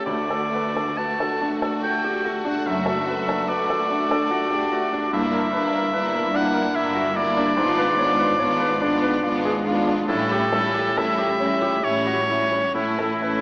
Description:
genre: classical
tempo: 64-75 BPM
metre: 3/4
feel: rubato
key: D major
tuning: A4 = 443 Hz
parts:
  - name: bright baby grand piano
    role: melody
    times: 0.0-13.4 s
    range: D2 to C#5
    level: -24 LUFS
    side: equal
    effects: none
  - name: warm symphonic violin section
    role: melody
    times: 0.0-13.4 s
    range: E4 to F#4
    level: -30 LUFS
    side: left 1 dB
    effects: none
  - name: bright oboe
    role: second line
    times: 0.0-13.4 s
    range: E4 to A5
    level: -23 LUFS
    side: equal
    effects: none
  - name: warm symphonic violin section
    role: second line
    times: 0.0-13.4 s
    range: A3 to D4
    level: -30 LUFS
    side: left 1 dB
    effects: none
  - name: warm symphonic viola section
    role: accompaniment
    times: 0.0-13.4 s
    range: G3 to B3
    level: -30 LUFS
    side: equal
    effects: none
  - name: rich studio double bass section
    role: bass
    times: 0.1-13.4 s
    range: F#1 to D2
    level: -36 LUFS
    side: equal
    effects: none
  - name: rich symphonic cello section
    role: bass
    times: 0.1-13.4 s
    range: D2 to A2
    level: -31 LUFS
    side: equal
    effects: none
room: wet concert hall reverb, RT60 2.1 s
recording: small speaker sound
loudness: -19 LUFS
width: side -24 dB against mid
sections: 0.0-13.4 A section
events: none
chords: 0.1 D; 2.7 D/F#; 5.1 Em7b5/G; 7.6 G#dim7; 10.1 A7; 12.7 A

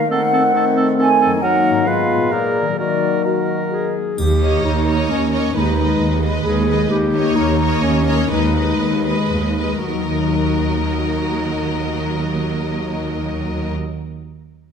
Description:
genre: classical, dramatic, fast romantic movement for symphony orchestra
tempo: 110-137 BPM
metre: 3/4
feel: rubato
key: Eb minor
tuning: A4 = 440 Hz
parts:
  - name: mellow large flute ensemble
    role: second line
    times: 0.0-4.0 s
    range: D5 to Ab5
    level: -18 LUFS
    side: right 1 dB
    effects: none
  - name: warm bassoon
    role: accompaniment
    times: 0.0-3.9 s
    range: Eb3 to Bb3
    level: -22 LUFS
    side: right 1 dB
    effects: none
  - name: warm French horn section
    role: sustained chords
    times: 0.0-3.9 s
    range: A3 to Ab4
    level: -22 LUFS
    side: left 2 dB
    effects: none
  - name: concert harp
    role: arpeggios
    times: 0.0-14.0 s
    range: Gb2 to Eb5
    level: -24 LUFS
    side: left 6 dB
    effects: none
  - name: warm clarinet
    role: second line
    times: 0.1-13.7 s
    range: C4 to Ab4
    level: -23 LUFS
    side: left 2 dB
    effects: none
  - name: warm oboe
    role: second line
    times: 0.1-3.9 s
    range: A4 to Cb5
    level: -24 LUFS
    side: right 3 dB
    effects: none
  - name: rich symphonic cello section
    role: bass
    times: 4.2-13.7 s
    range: Eb2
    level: -23 LUFS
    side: right 3 dB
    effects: none
  - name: rich symphonic double bass section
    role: bass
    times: 4.2-13.7 s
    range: Eb2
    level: -23 LUFS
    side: right 4 dB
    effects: none
  - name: triangle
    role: percussion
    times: 4.2-5.1 s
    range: none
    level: -36 LUFS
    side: left 2 dB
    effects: none
  - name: warm symphonic violin section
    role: melody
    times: 4.4-13.7 s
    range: Eb5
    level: -29 LUFS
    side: left 2 dB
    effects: none
  - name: rich symphonic violin section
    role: second line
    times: 4.4-13.7 s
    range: Bb4 to Db5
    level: -26 LUFS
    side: equal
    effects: none
  - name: rich studio viola section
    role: accompaniment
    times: 4.4-13.7 s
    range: Gb3 to Bb3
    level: -25 LUFS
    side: left 2 dB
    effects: none
room: wet scoring stage reverb, RT60 1.4 s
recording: none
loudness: -15 LUFS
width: side -7 dB against mid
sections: 0.0-4.2 A section; 4.2-9.9 B section; 9.9-13.0 C section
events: slowing down 6.2-9.9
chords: 0.1 Ebdim7; 1.4 Ebm/Gb; 1.9 Fdim/Ab; 2.3 Bb7; 2.8 Ebm; 4.2 Eb7; 5.6 Abm/Eb; 6.9 Eb7; 8.3 Abm/Eb; 9.9 Ebm

